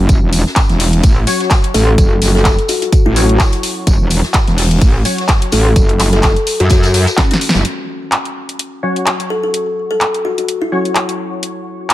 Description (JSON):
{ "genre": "bass house", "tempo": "127 BPM", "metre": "4/4", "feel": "swing 56% on 16ths", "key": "F# minor", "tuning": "A4 = 439 Hz", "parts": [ { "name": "metallic wobble bass", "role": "bass", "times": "0.0-7.6 s", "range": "E1 to F#2", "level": "-12 LUFS", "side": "equal", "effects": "distortion, chorus, overdrive, sidechain pumping" }, { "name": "electronic kick drum", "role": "drums", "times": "0.1-7.3 s", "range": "none", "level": "-12 LUFS", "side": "equal", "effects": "none" }, { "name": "house drum kit", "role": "drums", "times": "0.1-11.9 s", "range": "handclaps, hi-hat, snare drum", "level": "-17 LUFS", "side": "equal", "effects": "none" }, { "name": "vintage drum kit", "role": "drums", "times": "0.1-7.6 s", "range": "hi-hat, snare drum, tambourine", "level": "-24 LUFS", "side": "left 1 dB", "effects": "high-pass filter on hats, high-pass filter on snare, high-pass filter on perc, high-pass filter on room" }, { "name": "percussive organ stab", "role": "stabs", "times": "1.3-11.9 s", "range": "F#3 to C#5", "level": "-21 LUFS", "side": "left 2 dB", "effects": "ensemble chorus, sidechain pumping, ping-pong delay" }, { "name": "kalimba", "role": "melody", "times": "1.7-11.0 s", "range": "C#4 to A4", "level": "-20 LUFS", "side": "left 2 dB", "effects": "ping-pong delay" } ], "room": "little or no reverb", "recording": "none", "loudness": "-11 LUFS", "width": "side -14 dB against mid", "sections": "0.0-7.7 A section; 7.7-11.9 B section", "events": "drum fill 7.2-7.7; band accent 7.5", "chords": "0.0 F#5", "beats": "| 0.09 0.56 1.03 1.51 | 1.98 2.45 2.92 3.40 | 3.87 4.34 4.82 5.29 | 5.76 6.23 6.71 7.18 | 7.65 8.12 8.59 9.07 | 9.54 10.01 10.48 10.96 | 11.43 11.90" }